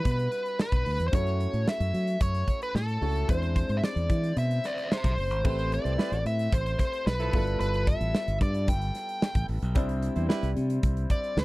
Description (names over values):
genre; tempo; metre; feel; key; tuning
polished 1980s jazz-funk pop; 111 BPM; 4/4; straight; E minor; A4 = 441 Hz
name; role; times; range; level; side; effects
nasal lead guitar with a parked wah; melody; 0.0-11.4 s; A4 to G5; -31 LUFS; equal; overdrive
clear concert grand piano; accompaniment; 0.0-11.4 s; G3 to C#5; -36 LUFS; left 1 dB; wide subtle chorus
modern bright fingered electric bass; bass; 0.1-11.4 s; F#1 to F#3; -28 LUFS; equal; none
modern studio drum kit; drums; 0.1-11.4 s; crash cymbal, hi-hat, kick drum, snare drum; -27 LUFS; equal; none
warm horn section; second line; 5.9-10.5 s; F3 to C5; -33 LUFS; right 4 dB; none
room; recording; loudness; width
little or no reverb; dry, close 1970s-style studio recording; -25 LUFS; side -20 dB against mid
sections
0.0-5.4 A section; 5.4-11.4 B section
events
none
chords
0.0 Em9; 1.1 F#m7; 3.3 E7b13; 5.4 Am9; 7.3 G13; 9.8 Cadd9